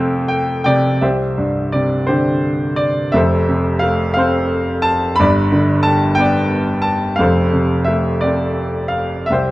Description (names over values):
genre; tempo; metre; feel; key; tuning
classical, lyrical solo piano; 58 BPM (dotted quarters); 6/8; uneven beats, rubato; C major; A4 = 441 Hz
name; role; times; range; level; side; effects
clear grand piano; solo; 0.0-9.5 s; F1 to B5; -14 LUFS; equal; none
room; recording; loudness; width
moderate recital hall reverb, RT60 1.4 s; none; -14 LUFS; side -18 dB against mid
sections
0.0-1.0 A section; 1.0-9.5 B section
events
grand piano fill 0.0-1.0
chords
0.0 F; 1.0 Csus2; 3.1 Fmaj7; 5.2 G; 7.2 F